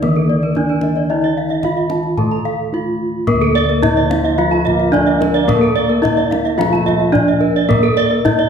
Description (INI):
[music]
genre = Balinese gamelan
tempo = 109 BPM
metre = 4/4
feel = straight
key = D pelog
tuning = A4 = 440 Hz
[part]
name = gamelan-type bronze metallophone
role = melody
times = 0.0-8.5 s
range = Bb3 to A4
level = -18 LUFS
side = right 2 dB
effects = none
[part]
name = gamelan-type bronze metallophone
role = accompaniment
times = 0.0-8.5 s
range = Eb3+35c to Bb3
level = -22 LUFS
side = left 3 dB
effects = none
[part]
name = gamelan-type bronze metallophone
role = arpeggios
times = 0.0-8.4 s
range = Bb4 to A5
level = -21 LUFS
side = left 4 dB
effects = none
[part]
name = gamelan-type bossed gongs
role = bass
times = 0.0-8.5 s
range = D2 to Bb4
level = -21 LUFS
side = equal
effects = none
[part]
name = kendang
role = percussion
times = 0.0-8.5 s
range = none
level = -22 LUFS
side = left 2 dB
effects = none
[part]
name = gamelan-type bronze metallophone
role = arpeggios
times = 0.2-8.5 s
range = A4 to Bb5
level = -20 LUFS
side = right 6 dB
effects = none
[part]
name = clear trombone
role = second line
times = 3.9-7.5 s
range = F3 to D4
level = -25 LUFS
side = left 4 dB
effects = none
[sound]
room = wet recital hall reverb, RT60 1.4 s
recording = recorded in a church or concert hall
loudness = -13 LUFS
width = side -7 dB against mid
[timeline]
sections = 0.0-3.3 A section; 3.3-8.5 B section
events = break 2.5-3.3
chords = none